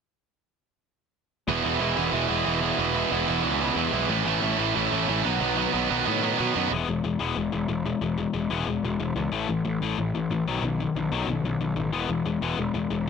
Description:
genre	punk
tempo	184 BPM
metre	4/4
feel	straight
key	E major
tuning	A4 = 438 Hz
part	distorted electric guitar	riff	1.5-6.7 s	E2 to B3	-25 LUFS	right 19 dB	overdrive
part	sludgy distorted guitar	riff	1.5-13.1 s	A2 to E4	-26 LUFS	left 6 dB	overdrive
part	fuzz picked electric bass	bass	1.5-13.1 s	E1 to B2	-31 LUFS	right 2 dB	overdrive
room	light reverb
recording	dense, heavily limited modern master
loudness	-23 LUFS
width	side -6 dB against mid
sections	1.5-6.7 A section; 6.7-13.1 B section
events	none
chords	1.5 E; 4.1 A; 5.2 B; 6.7 E; 9.3 A5; 10.5 B; 11.9 E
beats	| 1.48 1.81 2.14 2.46 | 2.79 3.12 3.44 3.77 | 4.10 4.42 4.75 5.08 | 5.41 5.73 6.06 6.38 | 6.71 7.04 7.37 7.69 | 8.02 8.34 8.67 9.00 | 9.32 9.65 9.97 10.30 | 10.63 10.95 11.28 11.60 | 11.93 12.25 12.58 12.90

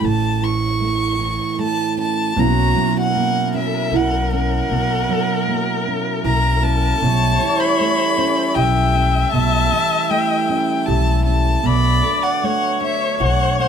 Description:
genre	acoustic folk-pop ballad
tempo	78 BPM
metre	3/4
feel	straight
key	unclear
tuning	A4 = 440 Hz
part	warm violin	melody	0.0-13.7 s	E5 to C#6	-21 LUFS	equal	none
part	nylon-string guitar	accompaniment	0.0-13.7 s	A2 to G4	-21 LUFS	right 4 dB	none
part	upright bass	bass	0.0-13.7 s	A1 to B1	-19 LUFS	left 1 dB	none
part	rich viola	second line	2.4-13.7 s	F#4 to E5	-22 LUFS	left 3 dB	none
part	pedal harmonium	sustained chords	2.4-13.7 s	F#3 to A#4	-28 LUFS	left 2 dB	none
room	moderate small room reverb, RT60 0.5 s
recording	band playing live in one room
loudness	-16 LUFS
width	side -7 dB against mid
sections	0.0-2.4 A section; 2.4-13.7 B section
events	none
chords	0.0 A; 2.4 F#7/B; 7.0 A7/B; 11.7 Bm7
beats	| 0.03 0.81 1.59 | 2.37 3.15 3.93 | 4.70 5.48 6.25 | 7.02 7.79 8.56 | 9.34 10.11 10.88 | 11.66 12.43 13.21

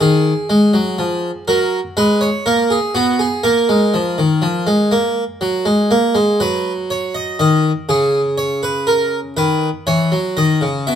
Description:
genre	classical, baroque-style two-part invention for harpsichord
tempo	61 BPM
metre	4/4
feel	straight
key	unclear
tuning	A4 = 441 Hz
part	harpsichord	solo	0.0-11.0 s	B2 to E5	-14 LUFS	equal	none
room	light reverb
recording	close, detailed microphones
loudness	-14 LUFS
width	side -9 dB against mid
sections	0.0-11.0 A section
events	none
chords	0.0 D#m; 1.5 F#; 3.4 A#5; 5.4 D#m/F# (rootless); 7.4 G#m; 9.4 B/D#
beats	0.50 1.48 2.46 | 3.44 4.43 5.42 6.41 | 7.39 8.38 9.37 10.37

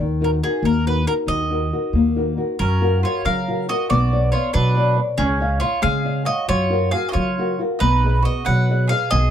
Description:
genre	italian folk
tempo	92 BPM (dotted quarters)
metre	6/8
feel	straight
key	F# major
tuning	A4 = 440 Hz
part	nylon-string guitar	accompaniment	0.0-9.3 s	C#3 to E#5	-22 LUFS	left 3 dB	none
part	upright bass	bass	0.0-9.3 s	B1 to F#3	-20 LUFS	right 1 dB	none
part	bowl-back mandolin	melody	0.2-9.3 s	Ab4 to F#5	-23 LUFS	right 2 dB	none
part	mandolin	second line	2.6-9.3 s	C#4 to B4	-28 LUFS	right 3 dB	none
room	light reverb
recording	dark, warm production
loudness	-17 LUFS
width	side -9 dB against mid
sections	0.0-2.6 A section; 2.6-9.3 B section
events	none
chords	0.0 Ebm; 2.6 F#maj7; 3.9 Bmadd9; 5.2 C#add9; 6.5 F#maj7; 7.8 B6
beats	0.63 | 1.28 1.93 | 2.60 3.25 | 3.90 4.55 | 5.19 5.84 | 6.49 7.15 | 7.81 8.47 | 9.12

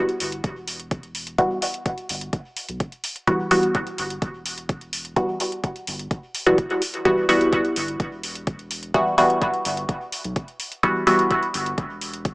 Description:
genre	dub techno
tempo	127 BPM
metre	4/4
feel	straight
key	E minor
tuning	A4 = 440 Hz
part	filtered dub chord stab	stabs	0.0-12.3 s	E3 to F#4	-20 LUFS	equal	chorus, phaser, sidechain pumping, dub echo
part	electronic hi-hat	drums	0.1-12.3 s	none	-30 LUFS	equal	none
part	soft dub sub bass	bass	0.2-12.3 s	E1 to B1	-37 LUFS	equal	tube saturation, sidechain pumping
part	electronic kick drum	drums	0.4-12.3 s	none	-26 LUFS	equal	none
room	moderate spring reverb, RT60 1.3 s, digital ambience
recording	echo-heavy mix, small speaker sound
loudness	-21 LUFS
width	side -24 dB against mid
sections	0.0-12.3 A section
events	none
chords	0.0 Emadd9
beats	0.44 0.91 | 1.38 1.86 2.33 2.80 | 3.27 3.75 4.22 4.69 | 5.16 5.64 6.11 6.58 | 7.05 7.53 8.00 8.47 | 8.94 9.42 9.89 10.36 | 10.83 11.31 11.78 12.25

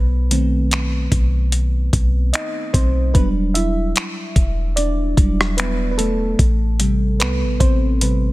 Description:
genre	contemporary R&B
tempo	74 BPM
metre	4/4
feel	swing 54% on 16ths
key	E minor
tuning	A4 = 441 Hz
part	mellow FM electric piano	accompaniment	0.0-8.3 s	C3 to E5	-22 LUFS	right 1 dB	chorus
part	clean 808-style bass	bass	0.0-8.3 s	E1 to C2	-18 LUFS	equal	none
part	dusty soul sampler-style drum kit	drums	0.3-8.2 s	finger snaps, hi-hat, kick drum, rim click	-18 LUFS	equal	soft clipping on snare
room	little or no reverb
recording	dense, heavily limited modern master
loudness	-16 LUFS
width	side -18 dB against mid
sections	0.0-3.1 A section; 3.1-8.3 B section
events	FM electric piano solo 0.0-3.1, 3.1-8.3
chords	0.0 B7b9; 3.1 Em9; 6.4 Am9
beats	0.72 1.53 2.34 | 3.15 3.96 4.77 5.58 | 6.39 7.20 8.01

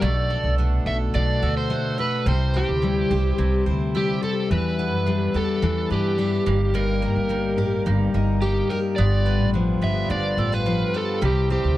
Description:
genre	acoustic pop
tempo	107 BPM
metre	4/4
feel	straight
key	unclear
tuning	A4 = 440 Hz
part	overdriven slide guitar	melody	0.0-11.8 s	G4 to E5	-26 LUFS	right 1 dB	none
part	picked steel-string acoustic guitar	accompaniment	0.0-11.8 s	G2 to B4	-24 LUFS	left 4 dB	none
part	pedal harmonium	sustained chords	0.0-11.8 s	B2 to G4	-33 LUFS	right 3 dB	none
part	bowl-back mandolin	arpeggios	0.0-11.8 s	G3 to G5	-34 LUFS	right 8 dB	none
part	upright bass	bass	0.0-11.8 s	G1 to G2	-23 LUFS	right 1 dB	none
room	little or no reverb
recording	dry, close 1970s-style studio recording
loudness	-20 LUFS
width	side -15 dB against mid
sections	0.0-11.8 A section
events	none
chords	0.0 Bm7; 2.3 C; 4.5 Em7; 6.5 Eb/G; 9.0 G7; 11.2 C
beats	| 0.02 0.58 1.14 1.70 | 2.26 2.82 3.38 3.94 | 4.50 5.06 5.62 6.18 | 6.74 7.30 7.86 8.42 | 8.98 9.54 10.10 10.66 | 11.22

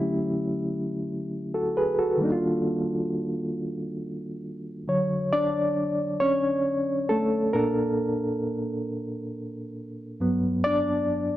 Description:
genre	R&B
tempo	45 BPM (dotted quarters)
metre	6/8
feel	straight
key	unclear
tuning	A4 = 439 Hz
part	bright reed electric piano	solo	0.0-11.4 s	G2 to D5	-24 LUFS	equal	fast tremolo
room	light reverb, digital ambience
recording	dark, warm production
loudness	-24 LUFS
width	side -14 dB against mid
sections	0.0-4.9 A section; 4.9-11.4 B section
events	reed electric piano solo 4.9-11.4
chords	0.0 Dmaj9; 2.2 Ebmaj9; 4.9 Dmaj7; 7.5 Bbmaj7; 10.2 Gmaj7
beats	0.87 | 2.20 3.54 | 4.87 6.20 | 7.54 8.87 | 10.20

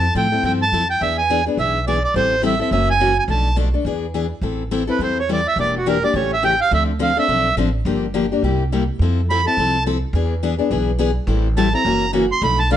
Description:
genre	acoustic string swing (jazz manouche)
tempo	210 BPM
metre	4/4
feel	swing 59% on 8ths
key	A minor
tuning	A4 = 439 Hz
part	accordion	melody	0.0-12.8 s	F#4 to C6	-18 LUFS	right 3 dB	none
part	picked steel-string acoustic guitar	accompaniment	0.0-12.8 s	B2 to A4	-21 LUFS	left 4 dB	none
part	upright bass	bass	0.0-12.8 s	E1 to A2	-22 LUFS	right 1 dB	none
room	light reverb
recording	nothing above 10.5 kHz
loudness	-16 LUFS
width	side -10 dB against mid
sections	0.0-4.4 A section; 4.4-12.8 B section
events	accordion solo 4.4-12.8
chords	0.0 Fmaj9; 1.0 E7; 2.1 Am7; 2.7 F#7; 3.3 Bm7b5; 3.9 E7; 4.4 Am7; 5.6 Em7b5; 6.1 A7; 6.7 Dm9; 7.9 Gm7; 8.4 C7; 9.0 Fmaj7; 10.1 E7; 11.3 Am7; 11.8 F#7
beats	0.15 0.43 0.72 | 1.01 1.29 1.58 1.86 | 2.15 2.43 2.72 3.00 | 3.29 3.58 3.86 4.14 | 4.43 4.72 5.00 5.29 | 5.57 5.86 6.14 6.43 | 6.71 7.00 7.29 7.57 | 7.86 8.14 8.43 8.71 | 9.00 9.28 9.57 9.85 | 10.14 10.42 10.71 10.99 | 11.28 11.56 11.85 12.13 | 12.42 12.71

